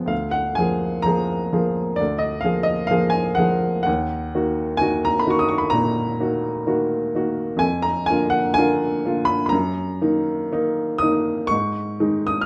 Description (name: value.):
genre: classical, romantic nocturne for solo piano.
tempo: 63 BPM.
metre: 4/4.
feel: uneven beats, rubato.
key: unclear.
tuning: A4 = 441 Hz.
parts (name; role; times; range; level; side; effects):
warm upright piano; solo; 0.0-12.5 s; D2 to F6; -21 LUFS; equal; none.
room: light reverb.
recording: none.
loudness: -21 LUFS.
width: mono.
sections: 0.0-12.5 A section.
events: none.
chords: 0.1 Bb7/D; 3.9 Ebm; 7.6 Bb/F; 9.5 Ebm/Gb; 11.5 Ab5.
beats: | 0.11 1.06 2.00 2.92 | 3.87 4.82 5.74 6.67 | 7.63 8.57 9.54 10.53 | 11.52.